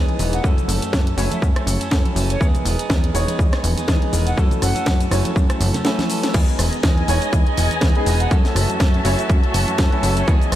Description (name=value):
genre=filtered disco house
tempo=122 BPM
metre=4/4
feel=swing 56% on 16ths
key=unclear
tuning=A4 = 440 Hz
part: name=dark concert grand piano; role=accompaniment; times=0.0-10.6 s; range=E3 to C#5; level=-25 LUFS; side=left 1 dB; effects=phaser, sidechain pumping, low-pass filter
part: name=clean electric guitar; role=riff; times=0.0-10.6 s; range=D#3 to A4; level=-29 LUFS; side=right 5 dB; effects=spring reverb, sidechain pumping, low-pass filter
part: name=plucky analog bass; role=bass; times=0.0-10.6 s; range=E1 to F#2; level=-21 LUFS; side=equal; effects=sidechain pumping, low-pass filter
part: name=house drum kit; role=drums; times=0.1-10.6 s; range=crash cymbal, hi-hat, rim click, shaker, snare drum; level=-25 LUFS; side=equal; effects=overdrive, sidechain pumping on perc, sidechain pumping on hats, sidechain pumping on cymbals
part: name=congas and tambourine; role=percussion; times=0.1-6.3 s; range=none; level=-32 LUFS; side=right 2 dB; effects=none
part: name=breathy concert flute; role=melody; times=0.3-5.0, 8.2-10.3 s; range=C#5 to F#5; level=-33 LUFS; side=equal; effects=sidechain pumping, low-pass filter, ping-pong delay
part: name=electronic kick drum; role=drums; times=0.4-10.4 s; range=none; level=-18 LUFS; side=equal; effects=overdrive
part: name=muted studio string section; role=sustained chords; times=6.3-10.6 s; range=E3 to A5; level=-26 LUFS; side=left 1 dB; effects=sidechain pumping, low-pass filter
room=light reverb, small room ambience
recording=none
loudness=-16 LUFS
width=side -13 dB against mid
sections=0.0-6.3 A section; 6.3-10.6 B section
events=drum fill 6.0-6.3; drop 6.3-10.6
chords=0.4 F#m7; 2.4 Emaj7; 4.4 F#m7; 6.3 Emaj7; 8.3 F#m7